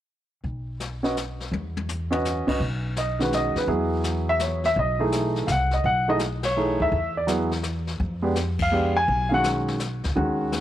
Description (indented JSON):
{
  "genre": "jazz piano trio",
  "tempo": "166 BPM",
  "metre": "3/4",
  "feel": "swing 66% on 8ths",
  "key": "B mixolydian",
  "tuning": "A4 = 439 Hz",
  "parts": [
    { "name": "upright bass", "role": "bass", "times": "0.4-10.6 s", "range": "B1 to F2", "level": "-28 LUFS", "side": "equal", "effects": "none" },
    { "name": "jazz brush drum kit", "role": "drums", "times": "0.4-10.6 s", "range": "brushed snare drum, crash cymbal, hi-hat, kick drum, ride cymbal, snare drum, toms", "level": "-33 LUFS", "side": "left 4 dB", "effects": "none" },
    { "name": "warm baby grand piano", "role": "melody", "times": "1.0-10.6 s", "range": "D#3 to Ab5", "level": "-23 LUFS", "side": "equal", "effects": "none" }
  ],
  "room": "light reverb, small room ambience",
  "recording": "1960s-style stereo",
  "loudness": "-22 LUFS",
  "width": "side -12 dB against mid",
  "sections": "0.4-2.6 A section; 2.6-10.6 B section",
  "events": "drum fill 1.5-2.2; band accent 6.4, 8.5",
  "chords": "0.4 N.C.; 1.5 E5; 2.6 B69; 3.7 Eadd9; 4.8 B13; 6.9 Esus2; 8.0 Fdim7; 9.1 B69"
}